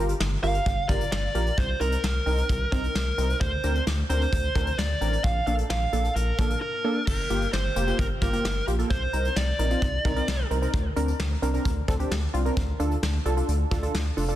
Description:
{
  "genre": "synth-pop",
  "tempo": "131 BPM",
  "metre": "4/4",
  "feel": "straight",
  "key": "Bb major",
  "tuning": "A4 = 439 Hz",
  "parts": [
    { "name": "warm analog keys", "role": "accompaniment", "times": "0.0-14.4 s", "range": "Bb3 to Bb4", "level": "-30 LUFS", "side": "right 1 dB", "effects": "chorus" },
    { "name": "rubbery square bass", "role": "bass", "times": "0.0-14.3 s", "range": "F1 to D2", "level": "-27 LUFS", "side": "equal", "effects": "none" },
    { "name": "vintage brush drum kit", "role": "drums", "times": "0.1-14.4 s", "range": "crash cymbal, hi-hat, kick drum, snare drum", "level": "-29 LUFS", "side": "equal", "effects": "none" },
    { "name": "dark smooth lead guitar", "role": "melody", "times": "0.4-10.5 s", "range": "Bb4 to F5", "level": "-29 LUFS", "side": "right 1 dB", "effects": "overdrive, tape echo" }
  ],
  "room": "light reverb, studio reverb",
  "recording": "dense, heavily limited modern master",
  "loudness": "-23 LUFS",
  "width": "side -13 dB against mid",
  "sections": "0.0-7.1 A section; 7.1-14.4 B section",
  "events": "silent gap 6.6-7.1",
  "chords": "0.0 Gm7; 1.6 Cm7; 3.4 Bbadd9/D; 5.2 Bbmaj7; 7.1 Gm7; 8.9 Cm7; 10.7 Bbadd9; 12.6 Dm"
}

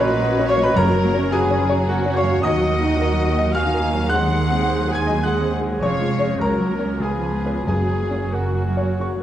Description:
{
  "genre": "classical, romantic movement for piano and orchestra",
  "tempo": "88-112 BPM",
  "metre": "3/4",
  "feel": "rubato",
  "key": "F# major",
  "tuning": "A4 = 440 Hz",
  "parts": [
    { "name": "bright grand piano", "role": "melody", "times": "0.0-9.2 s", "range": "C#2 to G#6", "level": "-22 LUFS", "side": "left 1 dB", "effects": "none" },
    { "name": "warm symphonic violin section", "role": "melody", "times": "0.0-9.2 s", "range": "F#4 to G#5", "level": "-31 LUFS", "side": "left 2 dB", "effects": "none" },
    { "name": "concert flute", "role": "second line", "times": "0.0-9.2 s", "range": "A#4 to B#5", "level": "-30 LUFS", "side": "equal", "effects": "none" },
    { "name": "rich studio violin section", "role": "second line", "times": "0.0-9.2 s", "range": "F#4 to G#5", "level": "-31 LUFS", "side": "left 2 dB", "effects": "none" },
    { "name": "warm oboe", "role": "second line", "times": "0.0-9.2 s", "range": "F#4 to G#5", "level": "-31 LUFS", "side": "right 1 dB", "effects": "none" },
    { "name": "warm symphonic viola section", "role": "accompaniment", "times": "0.0-9.2 s", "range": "C#3 to G#4", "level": "-26 LUFS", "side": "right 2 dB", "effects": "none" },
    { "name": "warm French horn section", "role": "sustained chords", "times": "0.0-9.2 s", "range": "E#3 to C#4", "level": "-29 LUFS", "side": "left 3 dB", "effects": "none" },
    { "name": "rich symphonic cello section", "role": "bass", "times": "0.0-9.2 s", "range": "C#2 to A#2", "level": "-26 LUFS", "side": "right 2 dB", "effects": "none" },
    { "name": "warm symphonic double bass section", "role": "bass", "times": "0.0-9.2 s", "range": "E#1 to D#2", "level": "-26 LUFS", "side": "right 3 dB", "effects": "none" },
    { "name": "timpani", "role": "percussion", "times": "0.8-1.6, 7.7-8.6 s", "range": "F#2", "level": "-28 LUFS", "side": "equal", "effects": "none" }
  ],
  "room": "moderate recital hall reverb, RT60 1.5 s",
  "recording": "nothing above 10.7 kHz",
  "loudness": "-17 LUFS",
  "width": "side -11 dB against mid",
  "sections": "0.0-9.2 A section",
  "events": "none",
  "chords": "0.0 F#/A#; 0.8 F#; 2.4 D#m; 4.1 G#7/D#; 5.8 C#/E#; 6.4 F#/C#; 7.0 C#7; 7.7 F#"
}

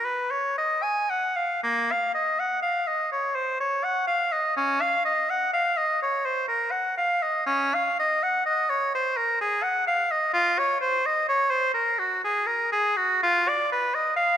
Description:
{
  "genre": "classical, baroque-style fantasia for unaccompanied oboe",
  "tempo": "62 BPM",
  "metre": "3/4",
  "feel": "uneven beats, rubato",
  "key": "Bb minor",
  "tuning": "A4 = 440 Hz",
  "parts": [
    { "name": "bright oboe", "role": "solo", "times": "0.0-14.4 s", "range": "Bb3 to Ab5", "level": "-22 LUFS", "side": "equal", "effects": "none" }
  ],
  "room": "moderate scoring stage reverb, RT60 1.9 s",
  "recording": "none",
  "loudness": "-22 LUFS",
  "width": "side -10 dB against mid",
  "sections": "0.0-1.6 A section; 1.6-14.4 A section",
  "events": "none",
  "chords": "none"
}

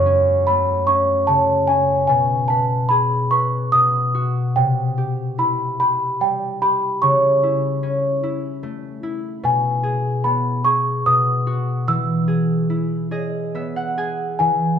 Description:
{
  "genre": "children's music, lullaby",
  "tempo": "74 BPM",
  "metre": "3/4",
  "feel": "rubato",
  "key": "E major",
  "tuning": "A4 = 440 Hz",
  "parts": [
    { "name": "small celesta", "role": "melody", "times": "0.0-14.8 s", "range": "G5 to E6", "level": "-18 LUFS", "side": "equal", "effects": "none" },
    { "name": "concert harp", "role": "accompaniment", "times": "0.0-14.8 s", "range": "F#2 to G#5", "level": "-20 LUFS", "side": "equal", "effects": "none" }
  ],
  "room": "wet recital hall reverb, RT60 1.7 s",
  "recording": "recorded in a church or concert hall",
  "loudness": "-17 LUFS",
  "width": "side -8 dB against mid",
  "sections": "0.0-14.4 A section",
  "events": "harp fill 12.7-14.4",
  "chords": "0.0 F#m; 2.1 Amaj9/B; 3.7 B; 4.6 C; 7.0 A/C#; 9.4 G#madd11/B; 11.1 B; 11.9 E"
}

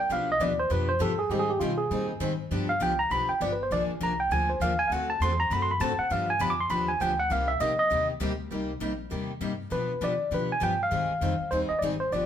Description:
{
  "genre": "acoustic string swing (jazz manouche)",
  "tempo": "200 BPM",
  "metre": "4/4",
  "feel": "swing 60% on 8ths",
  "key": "C minor",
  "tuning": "A4 = 440 Hz",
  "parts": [
    { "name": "bright tine electric piano", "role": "melody", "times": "0.0-12.3 s", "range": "F4 to D6", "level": "-26 LUFS", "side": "equal", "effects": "none" },
    { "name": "picked steel-string acoustic guitar", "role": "accompaniment", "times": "0.1-12.3 s", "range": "B2 to B4", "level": "-33 LUFS", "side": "left 4 dB", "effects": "none" },
    { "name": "picked steel-string acoustic guitar", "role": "accompaniment", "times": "0.1-12.3 s", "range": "B2 to B4", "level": "-37 LUFS", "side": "right 4 dB", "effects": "none" },
    { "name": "upright bass", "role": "bass", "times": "0.1-12.3 s", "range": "G1 to Eb3", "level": "-33 LUFS", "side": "equal", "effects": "none" }
  ],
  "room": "moderate studio reverb, RT60 0.9 s",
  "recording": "band playing live in one room",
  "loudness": "-25 LUFS",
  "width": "side -9 dB against mid",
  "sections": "0.0-8.5 A section; 8.5-12.3 B section",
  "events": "tine electric piano solo 0.0-8.5",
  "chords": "0.1 G7/B; 1.3 Abmaj7; 2.5 G7; 3.7 Bb7; 4.9 D7; 6.1 G7; 7.3 Cm9; 8.5 Cm7; 9.7 G7/B; 10.9 Abmaj7"
}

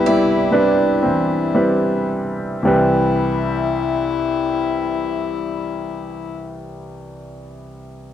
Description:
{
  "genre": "acoustic folk-pop ballad",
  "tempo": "53-64 BPM",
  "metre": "4/4",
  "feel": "straight",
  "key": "C major",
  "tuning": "A4 = 440 Hz",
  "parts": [
    { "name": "warm concert grand piano", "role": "melody", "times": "0.0-8.1 s", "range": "C2 to B4", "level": "-18 LUFS", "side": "right 1 dB", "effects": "none" },
    { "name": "warm cello", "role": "second line", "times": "0.0-6.3 s", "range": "E4", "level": "-23 LUFS", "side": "left 9 dB", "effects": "cassette tape" },
    { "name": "picked steel-string acoustic guitar", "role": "arpeggios", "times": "0.1-1.1 s", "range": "D5", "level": "-28 LUFS", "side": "right 12 dB", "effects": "cassette tape" }
  ],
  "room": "light reverb",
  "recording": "home recording on cassette",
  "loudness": "-16 LUFS",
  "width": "side -10 dB against mid",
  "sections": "0.0-2.6 A section; 2.6-7.2 B section",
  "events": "slowing down 0.0-2.6",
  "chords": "0.0 Cmaj7"
}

